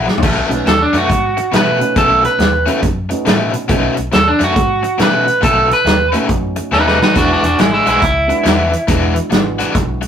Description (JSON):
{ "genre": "electric blues shuffle", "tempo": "139 BPM", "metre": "4/4", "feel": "swing 64% on 8ths", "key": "B mixolydian", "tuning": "A4 = 441 Hz", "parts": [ { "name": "dark concert grand piano", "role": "accompaniment", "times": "0.0-10.0 s", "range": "G#3 to F#5", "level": "-22 LUFS", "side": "right 3 dB", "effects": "none" }, { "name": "overdriven semi-hollow guitar", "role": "riff", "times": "0.0-10.1 s", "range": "B2 to F#4", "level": "-19 LUFS", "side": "left 4 dB", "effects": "tremolo" }, { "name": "vintage muted fingered electric bass", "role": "bass", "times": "0.0-10.0 s", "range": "E1 to B2", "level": "-22 LUFS", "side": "equal", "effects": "none" }, { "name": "natural country drum kit", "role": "drums", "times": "0.1-10.1 s", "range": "crash cymbal, hi-hat, kick drum, snare drum, toms", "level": "-16 LUFS", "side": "equal", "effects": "none" }, { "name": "electric guitar at the edge of break-up", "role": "melody", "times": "0.7-8.9 s", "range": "G#3 to B4", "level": "-13 LUFS", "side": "right 1 dB", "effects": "none" } ], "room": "moderate studio reverb, RT60 0.6 s", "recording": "rough rehearsal-room recording, tube saturation", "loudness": "-11 LUFS", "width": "side -8 dB against mid", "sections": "0.2-10.1 A section", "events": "drum fill 0.0, 6.7-7.2; clean electric guitar solo 0.2-10.1", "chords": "0.2 B9; 7.2 E9" }